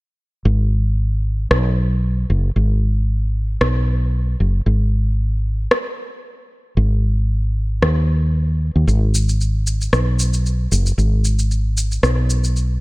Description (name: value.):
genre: organic downtempo.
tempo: 114 BPM.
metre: 4/4.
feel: swing 54% on 16ths.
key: G# minor.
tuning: A4 = 440 Hz.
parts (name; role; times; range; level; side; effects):
woody fretless electric bass; bass; 0.5-12.8 s; F#1 to D#2; -16 LUFS; equal; none.
electronic rim click and shaker; drums; 1.5-12.7 s; none; -22 LUFS; equal; studio ambience.
room: digital ambience.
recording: none.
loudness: -16 LUFS.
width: side -22 dB against mid.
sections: 0.5-12.8 A section.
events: none.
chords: none.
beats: | 0.45 0.98 1.51 2.03 | 2.56 3.09 3.61 4.14 | 4.67 5.19 5.72 6.24 | 6.77 7.30 7.82 8.35 | 8.88 9.40 9.93 10.45 | 10.98 11.51 12.03 12.56.